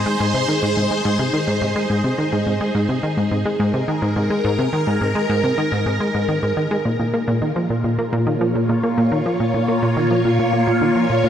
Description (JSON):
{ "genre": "ambient, sequencer-driven space music", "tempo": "106 BPM", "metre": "4/4", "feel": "straight", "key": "unclear", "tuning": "A4 = 441 Hz", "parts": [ { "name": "phased string machine", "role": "sustained chords", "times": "0.0-11.3 s", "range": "Bb2 to F5", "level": "-20 LUFS", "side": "equal", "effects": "ensemble chorus, phaser" }, { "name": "plucky analog bass", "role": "riff", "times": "0.0-11.3 s", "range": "Ab2 to Bb3", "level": "-19 LUFS", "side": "equal", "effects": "vintage 12-bit sampler grit, tape echo" } ], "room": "wet huge ambient reverb, RT60 8.2 s", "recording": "none", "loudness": "-17 LUFS", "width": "side -9 dB against mid", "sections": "0.0-11.3 A section", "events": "none", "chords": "0.0 Ab; 6.9 Bbm", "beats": "| 0.06 0.63 1.19 1.76 | 2.32 2.89 3.46 4.02 | 4.59 5.15 5.72 6.29 | 6.85 7.42 7.98 8.55 | 9.12 9.68 10.25 10.81" }